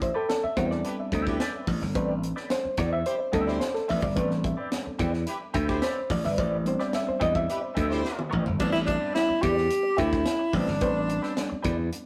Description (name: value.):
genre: funk.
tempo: 108 BPM.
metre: 4/4.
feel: straight.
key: A minor.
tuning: A4 = 442 Hz.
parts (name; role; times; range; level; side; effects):
clean electric guitar; accompaniment; 0.0-11.8 s; C4 to E5; -37 LUFS; equal; wah, tremolo.
reed electric piano; stabs; 0.0-11.6 s; G3 to E5; -33 LUFS; equal; overdrive, tape echo.
slap bass; bass; 0.0-11.9 s; G1 to E2; -30 LUFS; equal; none.
tight funk drum kit; drums; 0.0-12.1 s; crash cymbal, hi-hat, kick drum, snare drum, toms; -35 LUFS; equal; none.
warm horn section; second line; 0.9-8.3 s; E4 to C5; -38 LUFS; equal; none.
breathy tenor saxophone; melody; 8.6-11.6 s; D4 to G4; -28 LUFS; equal; none.
room: moderate stone room reverb, RT60 1.0 s.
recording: rough rehearsal-room recording.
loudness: -27 LUFS.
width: mono.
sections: 0.0-8.6 A section; 8.6-12.1 B section.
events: reed electric piano solo 0.0-8.6; drum fill 8.0-8.6.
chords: 0.0 Am11.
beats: 0.29 0.84 1.39 | 1.95 2.50 3.06 3.61 | 4.17 4.72 5.27 5.83 | 6.38 6.94 7.49 8.04 | 8.60 9.15 9.71 10.26 | 10.81 11.37 11.92.